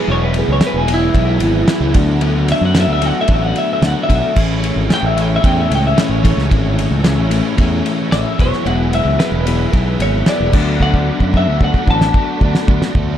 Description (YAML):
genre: indie rock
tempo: 112 BPM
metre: 4/4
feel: straight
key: unclear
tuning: A4 = 440 Hz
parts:
  - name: twelve-string electric guitar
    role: melody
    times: 0.0-12.9 s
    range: E4 to A5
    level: -19 LUFS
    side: equal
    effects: slapback echo
  - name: biting overdriven guitar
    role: riff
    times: 0.0-13.2 s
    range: A2 to F#4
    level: -22 LUFS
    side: right 7 dB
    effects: ensemble chorus, slapback echo
  - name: mellow electric guitar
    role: riff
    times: 0.0-13.2 s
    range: E3 to A4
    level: -21 LUFS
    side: left 10 dB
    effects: none
  - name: growling fingered electric bass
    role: bass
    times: 0.1-13.2 s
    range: E1 to F#2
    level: -17 LUFS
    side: equal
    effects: overdrive
  - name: cloth-damped thuddy drum kit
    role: drums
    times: 0.3-13.1 s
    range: crash cymbal, kick drum, ride cymbal, snare drum, toms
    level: -17 LUFS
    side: equal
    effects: none
  - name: tonewheel organ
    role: sustained chords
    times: 4.4-12.9 s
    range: G#4 to C#6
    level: -30 LUFS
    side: equal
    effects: slow rotary speaker, overdrive, chorus vibrato
room: studio ambience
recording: dark, warm production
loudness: -12 LUFS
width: side -10 dB against mid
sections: 0.0-12.9 A section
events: clean electric guitar solo 0.0-12.9; drum fill 10.8-12.9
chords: 0.0 Eadd9; 2.0 D6; 4.4 Amaj7; 8.4 Eadd9; 10.5 D6